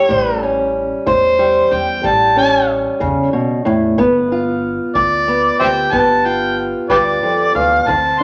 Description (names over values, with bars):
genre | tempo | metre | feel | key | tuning
acoustic country blues, solo or duo | 62 BPM (dotted quarters) | 12/8 | straight | unclear | A4 = 439 Hz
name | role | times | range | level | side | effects
overdriven harmonica | melody | 0.0-8.2 s | G4 to C6 | -16 LUFS | equal | none
fingerpicked old ladder-braced acoustic guitar | accompaniment | 0.0-8.2 s | D2 to G4 | -19 LUFS | equal | none
upright bass | bass | 0.0-8.2 s | G1 to E2 | -31 LUFS | equal | none
kick drum | drums | 0.1-8.0 s | none | -34 LUFS | equal | none
room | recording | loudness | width
wet large studio reverb, RT60 1.2 s | none | -15 LUFS | mono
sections
0.0-8.2 A section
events
none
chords
0.0 A7; 4.0 G7